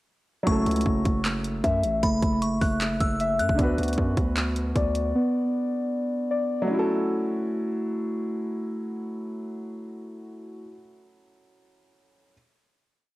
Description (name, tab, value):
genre	hip hop, trap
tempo	154 BPM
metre	4/4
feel	half-time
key	F# minor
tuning	A4 = 440 Hz
part	felt-muted upright piano	accompaniment	0.4-12.3 s	D3 to B4	-32 LUFS	right 1 dB	none
part	delicate synth tine bell	second line	0.5-3.6 s	B5 to F#6	-32 LUFS	right 1 dB	chorus, phaser, analog delay
part	muted felt-like synth keys	arpeggios	0.5-10.8 s	A3 to E5	-26 LUFS	equal	chorus, analog delay
part	distorted 808-style bass	bass	0.5-5.1 s	F#1 to F#2	-29 LUFS	equal	distortion
part	trap drum kit	drums	0.5-5.0 s	handclaps, hi-hat, kick drum	-27 LUFS	equal	overdrive, cassette tape
room	light reverb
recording	home recording on cassette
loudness	-23 LUFS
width	side -18 dB against mid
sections	0.5-6.7 hook; 6.7-9.8 final chord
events	none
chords	0.5 F#m7; 3.6 D6; 6.7 F#m7